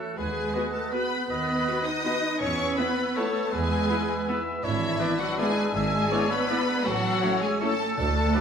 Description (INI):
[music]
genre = classical, orchestral ballroom waltz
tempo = 162 BPM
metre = 3/4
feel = uneven beats, rubato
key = E major, A major from 4.6 s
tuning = A4 = 444 Hz
[part]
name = flute section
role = second line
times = 0.0-8.4 s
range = E6 to F#6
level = -36 LUFS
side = left 2 dB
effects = none
[part]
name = warm oboe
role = second line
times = 0.0-8.4 s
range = G#4 to E5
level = -34 LUFS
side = right 1 dB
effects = none
[part]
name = mellow bassoon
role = accompaniment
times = 0.0-8.4 s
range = A3 to D4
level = -34 LUFS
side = equal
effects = none
[part]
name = warm studio violin section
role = melody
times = 0.2-8.4 s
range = E5 to D#6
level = -32 LUFS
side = left 5 dB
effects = none
[part]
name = clear clarinet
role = second line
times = 0.2-8.4 s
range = E4 to D#5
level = -33 LUFS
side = left 2 dB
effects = none
[part]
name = rich chamber violin section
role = second line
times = 0.2-8.4 s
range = E4 to D#5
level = -35 LUFS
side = left 2 dB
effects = none
[part]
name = rich chamber double bass section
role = bass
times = 0.2-8.3 s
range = G#1 to E2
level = -32 LUFS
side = right 3 dB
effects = none
[part]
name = warm chamber cello section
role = bass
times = 0.2-8.4 s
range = E3 to D#4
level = -30 LUFS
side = right 2 dB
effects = none
[part]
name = rich chamber viola section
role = accompaniment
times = 0.5-8.4 s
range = F#3 to F#4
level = -37 LUFS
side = right 2 dB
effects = none
[part]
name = warm trumpet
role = stabs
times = 0.5-8.4 s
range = B4 to D5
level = -38 LUFS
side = equal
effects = none
[part]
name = mellow French horn section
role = sustained chords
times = 0.6-8.4 s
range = A3 to F#4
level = -36 LUFS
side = left 4 dB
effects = none
[sound]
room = moderate scoring stage reverb, RT60 1.8 s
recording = minimal, uncompressed stereo recording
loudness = -23 LUFS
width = side -7 dB against mid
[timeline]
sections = 0.0-8.4 A section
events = none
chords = 0.2 B7/D#; 2.4 E; 4.6 E7/G#; 6.9 A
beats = | 0.17 0.54 0.93 | 1.30 1.67 2.05 | 2.41 2.78 3.17 | 3.53 3.90 4.28 | 4.64 5.00 5.39 | 5.75 6.11 6.49 | 6.85 7.22 7.61 | 7.97 8.34